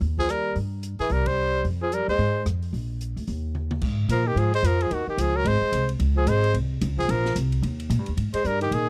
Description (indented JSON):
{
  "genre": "jazz, small-group swing and bop",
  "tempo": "220 BPM",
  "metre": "4/4",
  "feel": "swing 60% on 8ths",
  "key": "F minor",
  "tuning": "A4 = 440 Hz",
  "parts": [
    { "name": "upright bass", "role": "bass", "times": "0.0-8.9 s", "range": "Ab1 to Bb2", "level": "-27 LUFS", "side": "equal", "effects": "none" },
    { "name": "swinging big-band drum kit", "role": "drums", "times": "0.0-8.8 s", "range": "crash cymbal, hi-hat, kick drum, ride cymbal, rim click, snare drum, toms", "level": "-39 LUFS", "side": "equal", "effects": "none" },
    { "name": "brilliant trumpet", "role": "melody", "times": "0.2-8.9 s", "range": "Gb4 to C5", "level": "-29 LUFS", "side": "equal", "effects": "none" },
    { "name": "breathy tenor saxophone", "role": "second line", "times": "0.2-8.9 s", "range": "Eb3 to Ab3", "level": "-30 LUFS", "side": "equal", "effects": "none" }
  ],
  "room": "little or no reverb",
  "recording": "dry, close 1970s-style studio recording",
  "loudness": "-25 LUFS",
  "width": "mono",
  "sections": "0.0-3.8 A section; 3.8-8.9 B section",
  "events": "band accent 1.2; drum fill 3.6",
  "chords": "0.0 Absus2; 0.6 N.C.; 1.1 C5; 1.6 Fm; 2.7 Bb; 3.3 N.C.; 3.8 Fmadd11; 4.9 Dbadd9; 5.5 Ab; 6.0 Db5; 7.1 Bbsus2; 7.6 Eb; 8.2 Absus2"
}